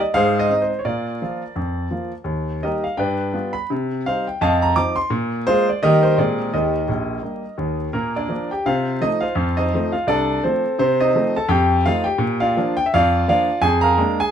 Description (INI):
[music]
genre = jazz, stride piano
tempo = 169 BPM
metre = 4/4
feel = swing 58% on 8ths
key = Eb major, Bb major from 7.9 s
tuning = A4 = 440 Hz
[part]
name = clear grand piano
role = solo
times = 0.0-14.3 s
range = Bb1 to D6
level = -17 LUFS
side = equal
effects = none
[sound]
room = moderate studio reverb, RT60 0.6 s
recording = minimal, uncompressed stereo recording, vinyl crackle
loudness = -17 LUFS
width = side -8 dB against mid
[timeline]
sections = 0.0-7.9 A section; 7.9-14.3 B section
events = none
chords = 0.1 Ab; 0.9 Bb; 2.3 Eb; 3.0 G7; 3.7 Cm; 4.4 F5; 5.1 Bb5; 5.8 Eb; 6.2 Bb13; 6.5 Eb; 7.9 Bb; 8.7 F7/C; 9.4 F7; 10.8 F7/C; 11.5 F7; 12.2 Bb; 13.6 Bb7/F